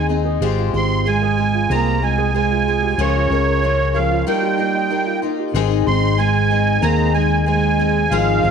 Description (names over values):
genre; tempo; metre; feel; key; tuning
indie folk with a building arrangement; 94 BPM; 4/4; straight; Ab major; A4 = 436 Hz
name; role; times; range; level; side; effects
musette accordion; melody; 0.0-8.5 s; Db5 to C6; -20 LUFS; right 3 dB; slapback echo
mellow French horn; second line; 0.0-8.5 s; Db3 to C4; -22 LUFS; right 12 dB; none
picked twelve-string acoustic guitar; accompaniment; 0.0-8.5 s; Ab2 to Bb4; -23 LUFS; left 15 dB; none
dark upright piano; arpeggios; 0.0-5.5 s; Ab3 to Eb5; -25 LUFS; right 12 dB; none
hollow-body short-scale fingered electric bass; bass; 0.0-8.5 s; Ab1 to Eb2; -20 LUFS; left 2 dB; none
room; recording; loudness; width
moderate spring reverb, RT60 1.9 s, studio reverb; 1960s-style stereo with parts hard left and right; -15 LUFS; side -6 dB against mid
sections
0.0-5.6 A section; 5.6-8.5 A section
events
break 4.3-5.6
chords
0.4 Fmadd9/Ab; 3.0 Db6; 4.3 Ebadd9; 5.6 Ab